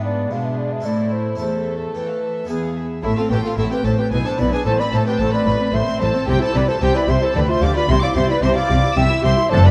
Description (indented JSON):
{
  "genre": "classical, baroque-style concerto movement with solo episodes",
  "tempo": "111 BPM",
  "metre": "3/4",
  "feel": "straight",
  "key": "A minor",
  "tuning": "A4 = 440 Hz",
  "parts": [
    { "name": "mellow baroque flute", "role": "melody", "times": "0.0-9.7 s", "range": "A4 to G5", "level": "-25 LUFS", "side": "equal", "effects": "none" },
    { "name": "rich chamber violin section", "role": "melody", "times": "0.0-9.7 s", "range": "B4 to E6", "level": "-30 LUFS", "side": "equal", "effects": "none" },
    { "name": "warm chamber violin section", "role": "second line", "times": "0.0-9.7 s", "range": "D4 to E5", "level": "-28 LUFS", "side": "equal", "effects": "none" },
    { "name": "dark chamber viola section", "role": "accompaniment", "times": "0.0-9.6 s", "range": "G#3 to G4", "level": "-28 LUFS", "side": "equal", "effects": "none" },
    { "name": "harpsichord", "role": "accompaniment", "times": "0.0-9.7 s", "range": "E2 to B4", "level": "-30 LUFS", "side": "equal", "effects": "none" },
    { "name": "rich chamber cello section", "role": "bass", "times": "0.0-9.7 s", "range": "E2 to E3", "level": "-24 LUFS", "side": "equal", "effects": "none" },
    { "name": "warm chamber double bass section", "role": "bass", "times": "3.0-9.7 s", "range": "F#1 to D2", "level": "-23 LUFS", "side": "equal", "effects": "none" }
  ],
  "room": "moderate concert hall reverb, RT60 2.1 s",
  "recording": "dark, warm production",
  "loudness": "-19 LUFS",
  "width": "mono",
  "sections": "0.0-3.0 A section; 3.0-9.7 B section",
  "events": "none",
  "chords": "0.0 E7/G#; 0.9 Am; 1.4 Esus4; 2.5 E; 3.0 Am; 4.1 E5/B; 4.7 Am; 6.3 C; 7.4 G5/D; 7.9 C"
}